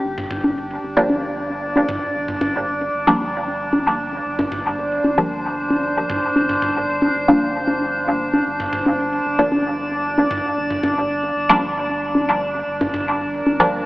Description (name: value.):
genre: dub techno.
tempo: 114 BPM.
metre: 4/4.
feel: straight.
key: G minor.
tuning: A4 = 436 Hz.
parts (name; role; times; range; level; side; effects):
warm sub bass; bass; 0.0-13.9 s; G1; -36 LUFS; equal; none.
drifting glass-harmonics texture; texture; 0.0-13.9 s; D4 to D5; -22 LUFS; equal; chorus, built-in reverb.
electronic toms and bongos; percussion; 0.2-13.6 s; none; -22 LUFS; equal; dub echo.
filtered dub chord stab; stabs; 1.0-13.9 s; F3 to D4; -21 LUFS; equal; phaser, dub echo.
room: moderate huge ambient reverb, RT60 6.1 s.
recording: AM radio sound.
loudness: -17 LUFS.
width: side -19 dB against mid.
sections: 0.0-13.9 A section.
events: none.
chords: 0.0 Gm7.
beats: | 0.04 0.57 1.10 1.62 | 2.15 2.67 3.20 3.73 | 4.25 4.78 5.31 5.83 | 6.36 6.89 7.41 7.94 | 8.46 8.99 9.52 10.04 | 10.57 11.10 11.62 12.15 | 12.68 13.20 13.73.